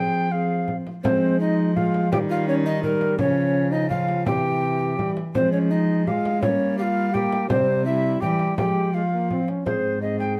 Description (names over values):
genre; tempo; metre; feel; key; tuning
classical, renaissance-style consort dance; 167 BPM; 3/4; straight; F minor; A4 = 440 Hz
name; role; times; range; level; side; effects
mellow hollow tenor recorder; melody; 0.0-10.4 s; Ab4 to G5; -28 LUFS; equal; none
mellow tenor recorder; second line; 0.0-10.4 s; C4 to G5; -29 LUFS; equal; none
clear trombone; accompaniment; 0.0-10.4 s; E3 to Db4; -31 LUFS; equal; none
rich cello; bass; 0.0-10.4 s; Ab2 to Ab3; -27 LUFS; equal; none
frame drum; percussion; 0.7-10.4 s; none; -32 LUFS; equal; none
room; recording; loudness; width
moderate stone room reverb, RT60 1.1 s; dark, warm production; -22 LUFS; mono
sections
0.0-1.0 A section; 1.0-9.7 A section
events
none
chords
0.0 Fm; 2.1 Eb; 3.2 Db; 4.3 C; 5.4 Fm; 6.4 Gdim; 7.5 C; 8.6 Fm; 9.7 Ab